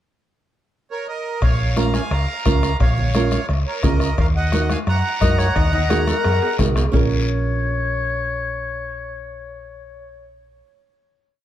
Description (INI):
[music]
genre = latin, cumbia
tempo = 174 BPM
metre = 4/4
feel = straight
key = Bb minor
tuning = A4 = 441 Hz
[part]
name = accordion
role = melody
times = 0.9-6.6 s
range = Bb4 to Bb5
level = -25 LUFS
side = right 3 dB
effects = none
[part]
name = hollow-body short-scale fingered electric bass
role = bass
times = 1.4-10.6 s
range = Bb1 to Gb2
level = -21 LUFS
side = equal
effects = none
[part]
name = bombo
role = percussion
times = 1.4-7.0 s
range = none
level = -22 LUFS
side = left 1 dB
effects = none
[part]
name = cowbell and timbales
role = percussion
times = 1.4-7.0 s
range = none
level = -31 LUFS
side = right 4 dB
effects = none
[part]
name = guiro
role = percussion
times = 1.4-7.0 s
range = none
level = -34 LUFS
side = left 6 dB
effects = none
[part]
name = nylon-string guitar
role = accompaniment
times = 1.8-10.6 s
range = Db4 to Bb4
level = -25 LUFS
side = right 6 dB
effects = none
[part]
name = congas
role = percussion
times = 1.8-7.0 s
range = none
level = -28 LUFS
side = left 1 dB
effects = none
[part]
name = breathy clarinet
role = second line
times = 5.2-10.4 s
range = Ab4 to Eb5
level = -25 LUFS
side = left 7 dB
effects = none
[sound]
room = little or no reverb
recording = none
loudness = -17 LUFS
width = side -12 dB against mid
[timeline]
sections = 0.0-1.4 pickup bar; 1.4-6.9 groove; 6.9-9.7 final chord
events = drum fill 5.6-6.9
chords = 0.0 N.C.; 1.4 Bbm; 4.2 Ebm; 6.9 Bbm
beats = | 0.04 0.38 0.73 1.08 | 1.42 1.77 2.11 2.46 | 2.80 3.15 3.50 3.84 | 4.19 4.53 4.88 5.22 | 5.56 5.91 6.25 6.59 | 6.94 7.28 7.62 7.97 | 8.31 8.65 9.00 9.34